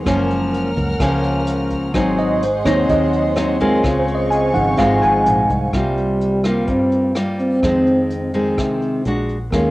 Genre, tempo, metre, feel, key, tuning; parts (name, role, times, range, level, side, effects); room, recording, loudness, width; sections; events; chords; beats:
bossa nova; 127 BPM; 4/4; straight; A4 = 440 Hz
nylon-string guitar; accompaniment; 0.0-9.7 s; F2 to F#4; -18 LUFS; left 1 dB; cassette tape
tine electric piano; accompaniment; 0.0-5.8 s; F3 to Ab5; -20 LUFS; right 2 dB; analog chorus, cassette tape
warm chamber violin section; sustained chords; 0.0-5.7 s; C4 to F6; -28 LUFS; equal; cassette tape
fingered electric bass; bass; 0.1-9.7 s; Gb1 to G2; -24 LUFS; equal
vintage brush drum kit; drums; 0.1-9.6 s; hi-hat, kick drum, rim click; -27 LUFS; equal; cassette tape
breathy trombone; melody; 5.8-9.7 s; G3 to C4; -18 LUFS; equal
moderate spring reverb, RT60 2.4 s; home recording on cassette; -15 LUFS; side -18 dB against mid
0.0-5.7 A section; 5.7-9.7 B section
tine electric piano solo 0.0-5.7
0.1 Gbmaj7; 1.9 Ab7; 5.7 C7sus4; 7.6 Fm7; 9.1 Bbaug7
| 0.06 0.53 1.00 1.47 | 1.95 2.42 2.89 3.37 | 3.84 4.31 4.78 5.26 | 5.73 6.21 6.68 7.15 | 7.63 8.10 8.58 9.05 | 9.53